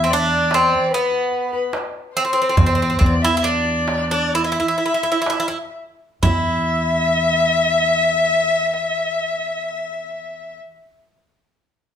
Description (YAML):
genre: Turkish makam ensemble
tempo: 60-75 BPM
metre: 4/4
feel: straight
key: unclear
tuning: A4 = 441 Hz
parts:
  - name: Greek bouzouki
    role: melody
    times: 0.0-10.6 s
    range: B3 to E4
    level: -20 LUFS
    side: right 2 dB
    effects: none
  - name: rich violin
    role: second line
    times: 0.0-10.6 s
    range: B4 to E5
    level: -20 LUFS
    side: left 3 dB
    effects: none
  - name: upright bass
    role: bass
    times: 0.0-10.6 s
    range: E2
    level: -22 LUFS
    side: equal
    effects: none
  - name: darbuka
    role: percussion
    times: 0.5-6.7 s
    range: none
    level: -21 LUFS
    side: right 2 dB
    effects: none
room: moderate large studio reverb, RT60 1.1 s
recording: band playing live in one room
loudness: -16 LUFS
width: side -8 dB against mid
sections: 0.0-6.2 A section; 6.2-10.2 B section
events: slowing down 0.0-6.2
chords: none